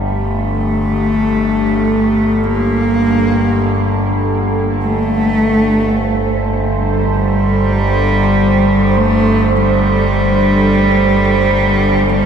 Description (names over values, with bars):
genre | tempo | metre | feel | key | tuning
dark ambient drone | free time | none | none | G minor | A4 = 440 Hz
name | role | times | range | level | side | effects
sweeping resonant pad | sustained chords | 0.0-12.3 s | G3 to C5 | -19 LUFS | right 2 dB | chorus
overtone-sweeping drone | drone | 0.0-12.3 s | G1 | -16 LUFS | equal | chorus, built-in reverb
warm cello | melody | 0.1-12.3 s | G3 to Bb3 | -14 LUFS | equal | tape echo
room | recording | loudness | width
wet huge ambient reverb, RT60 7.6 s | none | -11 LUFS | side -7 dB against mid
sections
0.0-12.3 A section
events
fade-in on analog synth pad 0.0-12.3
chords
0.0 Gsus2